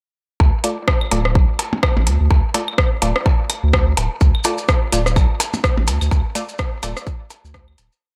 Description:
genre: minimal techno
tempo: 126 BPM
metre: 4/4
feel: swing 58% on 16ths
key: D minor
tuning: A4 = 440 Hz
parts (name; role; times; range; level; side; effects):
- saturated sub bass; bass; 0.4-7.9 s; D1 to D2; -20 LUFS; equal; sidechain pumping
- electronic kick drum; drums; 0.4-7.7 s; none; -19 LUFS; equal; none
- percussion blips and claves; percussion; 0.4-7.9 s; none; -28 LUFS; equal; dub echo
- wavetable chord stab; stabs; 0.6-6.9 s; A3 to D5; -28 LUFS; equal; dub echo
- booming analog drum machine; drums; 0.6-7.9 s; hi-hat, rim click; -24 LUFS; equal; none
- maracas; percussion; 4.2-8.0 s; none; -31 LUFS; equal; none
room: little or no reverb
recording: none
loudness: -18 LUFS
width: mono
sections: 0.4-8.0 groove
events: fade-out 5.5-8.0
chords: 0.4 D5

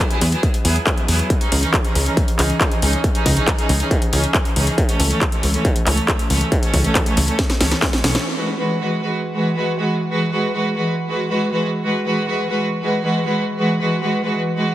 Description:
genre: uplifting trance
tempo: 138 BPM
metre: 4/4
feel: straight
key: E major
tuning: A4 = 442 Hz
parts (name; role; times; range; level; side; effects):
- rich chamber string section; sustained chords; 0.0-14.7 s; E3 to B4; -20 LUFS; equal; sidechain pumping
- electronic kick drum; drums; 0.0-7.9 s; none; -19 LUFS; equal; distortion
- techno drum kit; drums; 0.0-8.2 s; handclaps, hi-hat, snare drum; -21 LUFS; equal; sidechain pumping on hats
- plucky analog bass; bass; 0.2-8.2 s; B1 to E2; -19 LUFS; equal; sidechain pumping
room: light reverb, digital ambience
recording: heavily compressed radio sound, multiband compression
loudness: -16 LUFS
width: side -13 dB against mid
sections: 0.0-8.3 A section; 8.3-14.7 B section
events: drum fill 7.4-8.3; band accent 8.1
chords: 0.0 Eadd9; 1.3 C#madd9; 4.8 A/C#; 8.3 Eadd9

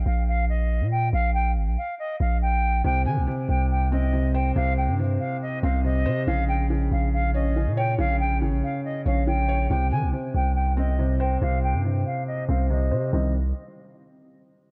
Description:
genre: hip hop, drill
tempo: 140 BPM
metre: 4/4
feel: half-time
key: C phrygian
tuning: A4 = 440 Hz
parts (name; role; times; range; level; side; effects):
- long sustained 808-style bass; bass; 0.0-13.5 s; Ab1 to Eb3; -25 LUFS; equal; none
- silver concert flute; melody; 0.1-13.3 s; Eb5 to Ab5; -31 LUFS; equal; low-pass filter, tape echo
- felt-muted upright piano; accompaniment; 2.8-13.3 s; C3 to Db5; -30 LUFS; equal; low-pass filter
room: studio reverb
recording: dark, warm production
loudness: -24 LUFS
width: mono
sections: 0.0-9.7 A section; 9.7-13.1 B section; 13.1-14.7 C section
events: filter sweep 9.7-13.1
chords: 0.0 F9sus4; 2.8 Cm; 6.3 Bbm; 9.7 Cm

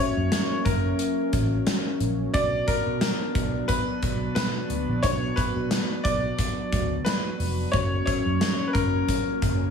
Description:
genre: 1980s-style pop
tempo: 89 BPM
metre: 4/4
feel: swing 55% on 16ths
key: B harmonic minor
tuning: A4 = 440 Hz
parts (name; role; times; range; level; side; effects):
- bright grand piano; melody; 0.0-9.7 s; A#4 to D5; -29 LUFS; left 2 dB; digital delay
- mellow tine electric piano; accompaniment; 0.0-9.7 s; A#3 to E5; -31 LUFS; right 2 dB; phaser
- lush unison pad; sustained chords; 0.0-9.7 s; F#3 to D4; -32 LUFS; left 2 dB; chorus
- vintage muted picked electric bass; bass; 0.2-9.7 s; E#1 to B2; -27 LUFS; equal; none
- gated 80s drum kit; drums; 0.3-9.6 s; hi-hat, kick drum, snare drum; -27 LUFS; equal; gated reverb
room: light reverb, small room ambience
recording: studio reverb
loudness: -22 LUFS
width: side -6 dB against mid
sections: 0.0-9.7 A section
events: none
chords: 0.0 F#; 2.3 Bm; 7.7 F#

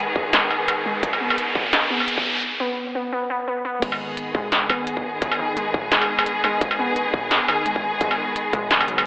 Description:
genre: half-time drum and bass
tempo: 172 BPM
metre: 4/4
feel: swing 57% on 16ths, half-time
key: G# minor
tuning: A4 = 441 Hz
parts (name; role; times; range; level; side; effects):
- clear studio string section; sustained chords; 0.0-9.1 s; D#3 to G#4; -24 LUFS; left 1 dB; vintage 12-bit sampler grit, sidechain pumping
- warbly dusty pluck; arpeggios; 0.0-9.0 s; D#3 to B3; -28 LUFS; equal; chorus, dub echo
- growling 808-style bass; bass; 0.0-9.1 s; D#1 to G#1; -37 LUFS; equal; tube saturation, high-pass filter
- riser; sound effects; 0.0-2.4 s; none; -25 LUFS; equal; none
- electronic kick drum; drums; 0.2-8.6 s; none; -27 LUFS; equal; distortion
- industrial drum kit; drums; 0.3-9.0 s; crash cymbal, hi-hat, snare drum, struck metal; -20 LUFS; equal; none
room: moderate lush hall reverb, RT60 2.1 s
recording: high-pass filter, telephone sound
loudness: -19 LUFS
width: side -22 dB against mid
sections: 0.0-3.8 A section; 3.8-9.1 B section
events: build-up 0.0-3.8; riser 0.0-2.4; filter sweep on synth pluck 0.0-3.8; filter sweep 0.0-3.8; break 2.4-3.8; drop 3.8-9.1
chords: 0.0 G#m

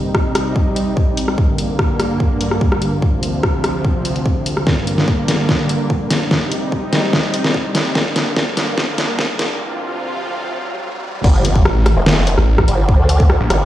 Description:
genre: heavy wobble dubstep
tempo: 146 BPM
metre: 4/4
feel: half-time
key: G minor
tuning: A4 = 440 Hz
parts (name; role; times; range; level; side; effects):
- supersaw pad; sustained chords; 0.0-11.2 s; D2 to F4; -20 LUFS; equal; sidechain pumping, low-pass filter
- dubstep drum kit; drums; 0.1-13.6 s; crash cymbal, hi-hat, rim click, snare drum; -18 LUFS; equal; none
- electronic kick drum; drums; 0.1-13.3 s; none; -17 LUFS; equal; none
- riser and impact; sound effects; 8.9-12.9 s; none; -27 LUFS; equal; none
- formant-sweep wobble bass; bass; 11.2-13.7 s; F1 to D2; -15 LUFS; equal; chorus, overdrive
- snarling distorted saw bass; bass; 11.7-13.5 s; A1 to Bb1; -14 LUFS; equal; distortion, overdrive
room: light reverb, digital ambience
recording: played on a big sound system in a bare room, stone room reverb, high-pass filter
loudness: -14 LUFS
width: side -13 dB against mid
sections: 0.0-11.2 A section; 11.2-13.7 B section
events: build-up 0.0-11.2; filter sweep on supersaw synth 0.0-11.2; filter sweep 0.0-11.2; drum fill 4.7-9.6; riser 8.9-11.2; break 9.6-11.2; drop 11.2-13.7; impact 11.2-12.9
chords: 0.0 Cm; 1.4 Gm; 3.0 Dm7; 4.7 Gm; 6.3 Cm; 8.0 Gm; 9.6 Dm7; 11.2 G5

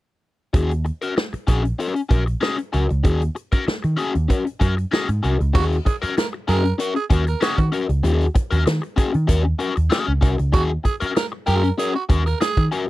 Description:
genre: funk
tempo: 96 BPM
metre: 4/4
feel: straight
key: Eb minor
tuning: A4 = 444 Hz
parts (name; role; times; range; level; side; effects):
- crunchy overdriven guitar; accompaniment; 0.5-12.9 s; Db4 to Bb4; -23 LUFS; left 4 dB; wah
- vintage muted picked electric bass; bass; 0.5-12.7 s; Bb1 to Eb3; -20 LUFS; equal; none
- swinging big-band drum kit; drums; 0.5-12.9 s; crash cymbal, hi-hat, kick drum, snare drum; -20 LUFS; equal; none
- raspy tenor saxophone; second line; 5.5-12.7 s; Gb4 to Bb4; -24 LUFS; right 6 dB; none
room: little or no reverb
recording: dry, close 1970s-style studio recording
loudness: -18 LUFS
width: side -17 dB against mid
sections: 0.5-5.5 A section; 5.5-12.9 B section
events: none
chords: 0.5 Ebm7

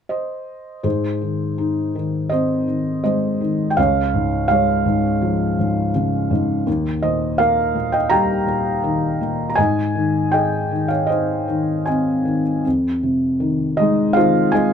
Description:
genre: classical, lyrical solo piano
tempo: 81 BPM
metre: 4/4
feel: rubato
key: Ab major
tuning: A4 = 440 Hz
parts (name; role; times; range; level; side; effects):
- felt-muted upright piano; solo; 0.1-14.7 s; Db2 to Bb5; -17 LUFS; equal; none
room: light reverb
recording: dark, warm production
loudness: -17 LUFS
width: side -7 dB against mid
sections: 0.8-12.7 A section; 12.7-14.7 B section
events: none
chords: 0.0 N.C.; 0.8 Ab; 3.8 Db; 6.7 Eb; 9.6 Ab; 12.7 Fm7

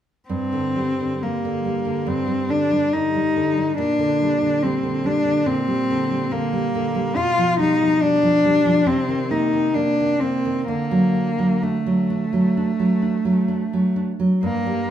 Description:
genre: romantic duo for cello and classical guitar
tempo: 63-73 BPM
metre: 4/4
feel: rubato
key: G minor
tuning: A4 = 441 Hz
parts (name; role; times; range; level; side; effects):
- warm cello; melody; 0.3-14.9 s; A3 to F4; -20 LUFS; left 1 dB; none
- nylon-string guitar; accompaniment; 0.3-14.9 s; G2 to D4; -22 LUFS; right 2 dB; none
room: moderate recital hall reverb, RT60 1.6 s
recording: minimal, uncompressed stereo recording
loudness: -18 LUFS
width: side -10 dB against mid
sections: 0.3-14.9 A section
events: none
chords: 0.3 Gm; 3.8 Gm/Bb; 7.2 G7/B; 8.9 Cm7; 10.7 D

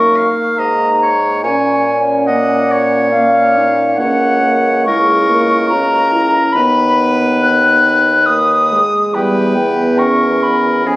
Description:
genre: classical, slow romantic movement for wind quintet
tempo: 70 BPM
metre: 3/4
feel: rubato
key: F# major, B major from 4.0 s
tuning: A4 = 440 Hz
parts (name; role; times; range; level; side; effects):
- concert flute; melody; 0.0-11.0 s; E#5 to F#6; -13 LUFS; left 1 dB; none
- clear oboe; second line; 0.0-11.0 s; G#4 to E#5; -19 LUFS; equal; none
- mellow clarinet; accompaniment; 0.0-11.0 s; A#3 to F#4; -22 LUFS; right 2 dB; none
- warm French horn; accompaniment; 0.0-11.0 s; G3 to C#4; -19 LUFS; right 1 dB; none
- warm bassoon; bass; 0.0-11.0 s; C#2 to A#2; -17 LUFS; equal; none
room: moderate recital hall reverb, RT60 1.6 s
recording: recorded on a phone in the room, studio reverb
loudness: -10 LUFS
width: side -19 dB against mid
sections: 0.0-11.0 A section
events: none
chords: 0.0 F#; 1.4 F#/A#; 4.0 F#7/C#; 6.5 B/D#; 9.1 C#m7b5/E

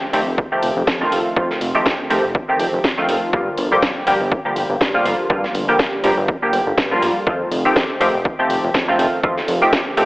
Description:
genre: filtered disco house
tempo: 122 BPM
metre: 4/4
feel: swing 56% on 16ths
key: unclear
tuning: A4 = 440 Hz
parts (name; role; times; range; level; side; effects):
- funky polysynth comp; accompaniment; 0.0-10.1 s; D3 to G4; -18 LUFS; equal; chorus, phaser, sidechain pumping, low-pass filter
- fat analog bass; bass; 0.1-10.1 s; F1 to G2; -23 LUFS; equal; sidechain pumping, low-pass filter
- house drum kit; drums; 0.1-10.1 s; hi-hat, snare drum; -22 LUFS; equal; overdrive, sidechain pumping on hats
- electronic kick drum; drums; 0.4-9.8 s; none; -22 LUFS; equal; overdrive
room: moderate lush hall reverb, RT60 2.1 s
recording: telephone sound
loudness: -15 LUFS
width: side -21 dB against mid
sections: 0.0-10.1 A section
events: none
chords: 0.0 F7; 3.3 Gm7; 7.3 F7

